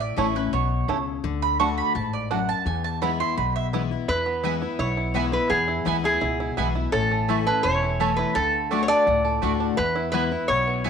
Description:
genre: bluegrass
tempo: 169 BPM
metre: 4/4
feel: straight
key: E mixolydian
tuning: A4 = 438 Hz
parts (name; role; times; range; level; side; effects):
- picked steel-string acoustic guitar; accompaniment; 0.0-10.9 s; E2 to F#4; -28 LUFS; left 10 dB; none
- mandolin; stabs; 0.0-10.9 s; A3 to C#6; -27 LUFS; right 8 dB; none
- upright bass; bass; 0.0-10.9 s; E1 to E2; -29 LUFS; equal; none
- bluegrass banjo; arpeggios; 0.2-10.9 s; A3 to A4; -28 LUFS; right 8 dB; none
- lap resonator guitar; melody; 4.1-10.9 s; G#4 to D5; -24 LUFS; equal; slapback echo
room: moderate echo chamber reverb, RT60 1.4 s, small room ambience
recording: 1960s-style stereo with parts hard left and right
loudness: -21 LUFS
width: side -7 dB against mid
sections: 0.0-4.1 A section; 4.1-10.9 B section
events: mandolin solo 0.0-4.1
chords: 0.0 A; 1.2 D; 2.7 E; 6.9 A; 8.4 D; 9.8 E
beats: 0.18 0.53 0.89 | 1.24 1.60 1.95 2.31 | 2.66 3.02 3.37 3.73 | 4.08 4.44 4.80 5.15 | 5.51 5.86 6.22 6.58 | 6.93 7.29 7.64 8.00 | 8.36 8.71 9.07 9.42 | 9.78 10.14 10.49 10.85

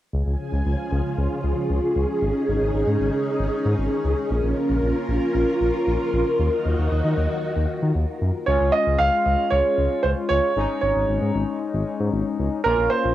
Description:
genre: pop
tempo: 115 BPM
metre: 4/4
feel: straight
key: unclear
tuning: A4 = 440 Hz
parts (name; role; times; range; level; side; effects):
- string machine, cellos; sustained chords; 0.1-8.5 s; Db3 to Ab5; -23 LUFS; equal; phaser, ensemble chorus, cassette tape
- smooth synth bass; bass; 0.1-13.1 s; Ab1 to Eb3; -23 LUFS; equal; none
- warm baby grand piano; melody; 8.5-13.1 s; Bb4 to F5; -20 LUFS; right 3 dB; cassette tape
- analog synth brass; accompaniment; 8.5-13.1 s; Ab3 to F4; -25 LUFS; left 5 dB; chorus, cassette tape
room: wet booth ambience, RT60 0.3 s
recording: home recording on cassette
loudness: -20 LUFS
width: side -13 dB against mid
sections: 0.1-8.5 A section; 8.5-13.1 B section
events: none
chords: 0.1 Db; 2.2 Absus4; 4.3 Bbm; 6.4 Ebmadd9; 8.5 Db; 10.6 Absus4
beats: | 0.13 0.65 1.17 1.69 | 2.22 2.74 3.26 3.78 | 4.30 4.83 5.35 5.87 | 6.39 6.91 7.43 7.96 | 8.48 9.00 9.52 10.04 | 10.56 11.09 11.61 12.13 | 12.65

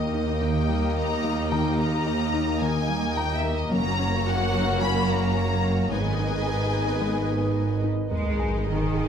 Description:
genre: cinematic, hybrid orchestral and electronic film score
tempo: 109 BPM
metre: 4/4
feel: straight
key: G# minor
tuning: A4 = 440 Hz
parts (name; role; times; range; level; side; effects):
- clear symphonic violin section; melody; 0.0-7.8 s; D#5 to B5; -30 LUFS; left 3 dB; none
- warm symphonic violin section; second line; 0.0-9.1 s; F#4 to D#5; -34 LUFS; left 2 dB; none
- warm symphonic viola section; accompaniment; 0.0-9.1 s; A#3 to G#4; -33 LUFS; right 1 dB; none
- warm analog pad; sustained chords; 0.0-9.1 s; D#3 to D#5; -30 LUFS; left 3 dB; chorus
- tight sequenced synth; arpeggios; 0.0-9.1 s; D#3 to G#4; -32 LUFS; left 2 dB; chorus
- clear symphonic double bass section; bass; 0.0-9.1 s; F#1 to D#2; -28 LUFS; right 3 dB; none
- rich symphonic cello section; bass; 0.0-9.1 s; D#2 to G#3; -29 LUFS; right 3 dB; none
- felt-muted upright piano; texture; 0.0-9.1 s; D#4 to A#5; -38 LUFS; left 2 dB; none
- dark French horn section; sustained chords; 0.4-7.2 s; A#3 to D#4; -36 LUFS; left 4 dB; none
- sub drop; sound effects; 8.1-9.1 s; none; -28 LUFS; equal; none
room: wet recital hall reverb, RT60 1.4 s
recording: none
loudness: -22 LUFS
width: side -8 dB against mid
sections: 0.0-8.1 A section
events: impact 8.1-9.1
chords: 0.0 D#; 3.7 F#; 5.9 G#m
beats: 0.41 0.96 | 1.51 2.06 2.61 3.16 | 3.71 4.26 4.82 5.37 | 5.92 6.47 7.02 7.57 | 8.12 8.67

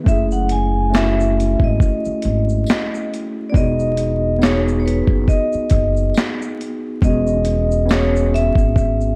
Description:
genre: lo-fi hip hop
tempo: 69 BPM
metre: 4/4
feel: swing 58% on 16ths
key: E major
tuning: A4 = 440 Hz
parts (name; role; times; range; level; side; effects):
- tine electric piano; accompaniment; 0.0-9.2 s; A3 to G#4; -24 LUFS; equal; none
- vibraphone with hard mallets; melody; 0.1-9.2 s; B4 to G#5; -24 LUFS; equal; none
- upright bass; bass; 0.1-9.1 s; E1 to G#1; -22 LUFS; equal; none
- boom bap sampler-style drum kit; drums; 0.1-9.2 s; handclaps, hi-hat, kick drum, shaker, snare drum; -20 LUFS; equal; none
- tambourine; percussion; 0.9-8.1 s; none; -46 LUFS; equal; none
room: light reverb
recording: dark, warm production, vinyl crackle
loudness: -17 LUFS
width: mono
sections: 0.0-9.2 A section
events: none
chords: 0.1 F#m9; 3.5 Emaj9; 7.0 E6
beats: | 0.06 0.93 1.80 2.67 | 3.54 4.41 5.28 6.15 | 7.02 7.89 8.76

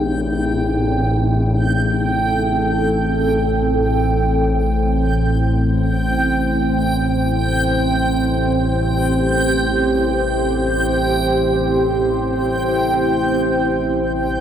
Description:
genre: dark ambient drone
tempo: free time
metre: none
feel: none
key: A minor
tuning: A4 = 439 Hz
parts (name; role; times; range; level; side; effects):
- deep dark ambient pad; sustained chords; 1.0-14.4 s; C4 to C5; -20 LUFS; right 1 dB; chorus, built-in reverb
- analog drone; drone; 0.0-14.4 s; A1 to A2; -20 LUFS; left 1 dB; chorus, phaser
- backwards swelling texture; texture; 0.0-14.4 s; G5; -22 LUFS; right 2 dB; built-in reverb
- tam-tam; percussion; 0.5-0.7 s; none; -25 LUFS; left 2 dB; low-pass filter on cymbals
room: wet plate reverb, RT60 3.7 s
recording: dreamy mix soaked in reverb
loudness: -15 LUFS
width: side -9 dB against mid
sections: 0.0-14.4 A section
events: none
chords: 0.0 Am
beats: free time

